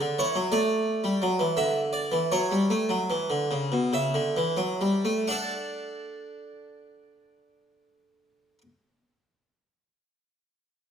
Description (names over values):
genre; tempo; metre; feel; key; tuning
classical, baroque-style two-part invention for harpsichord; 43-59 BPM (dotted quarters); 12/8; straight; D major; A4 = 440 Hz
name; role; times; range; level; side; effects
harpsichord; solo; 0.0-8.6 s; B2 to F#5; -24 LUFS; equal; none
room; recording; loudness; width
wet recital hall reverb, RT60 1.4 s; none; -24 LUFS; side -8 dB against mid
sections
0.0-5.3 A section; 5.3-10.8 B section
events
slowing down 0.0-5.3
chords
0.0 D; 0.5 A7sus4; 2.7 A; 5.3 D